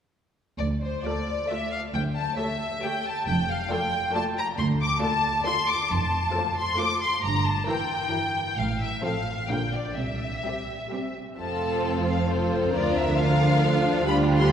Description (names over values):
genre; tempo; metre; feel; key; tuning
quick classical-period movement for string orchestra; 134 BPM; 3/4; rubato; D minor, F major from 5.9 s; A4 = 440 Hz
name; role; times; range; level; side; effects
warm symphonic violin section; melody; 0.6-14.5 s; C5 to D6; -27 LUFS; left 2 dB; none
rich studio double bass section; bass; 0.6-14.5 s; F1 to D2; -30 LUFS; right 2 dB; none
warm symphonic cello section; bass; 0.6-14.5 s; D2 to D3; -31 LUFS; right 2 dB; none
rich chamber violin section; second line; 1.1-14.5 s; F4 to D5; -32 LUFS; equal; none
rich studio viola section; accompaniment; 1.1-14.5 s; D3 to G4; -31 LUFS; equal; none
room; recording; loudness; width
wet church reverb, RT60 3.4 s; recorded in a church or concert hall; -23 LUFS; side -8 dB against mid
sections
0.6-11.4 A section; 11.4-14.5 B section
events
none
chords
0.6 Dm; 1.9 A7/D; 3.3 Dm/F; 4.6 Dm; 5.9 F; 7.2 Edim/G; 8.6 F/A; 9.5 Gm/Bb; 10.0 C; 11.4 F; 12.7 Bb/D